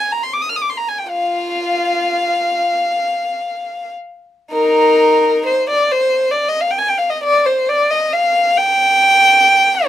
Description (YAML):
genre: classical, free, expressive piece for unaccompanied violin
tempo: 27-46 BPM (dotted quarters)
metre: 6/8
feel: rubato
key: F dorian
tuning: A4 = 440 Hz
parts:
  - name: rich violin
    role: solo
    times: 0.0-9.9 s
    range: Eb4 to F6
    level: -13 LUFS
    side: equal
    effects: none
room: little or no reverb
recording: close, detailed microphones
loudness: -12 LUFS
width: side -12 dB against mid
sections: 0.0-4.5 A section; 4.5-9.9 B section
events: none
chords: none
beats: | 1.07 2.67 | 4.50 5.89 | 7.22 8.55 | 9.88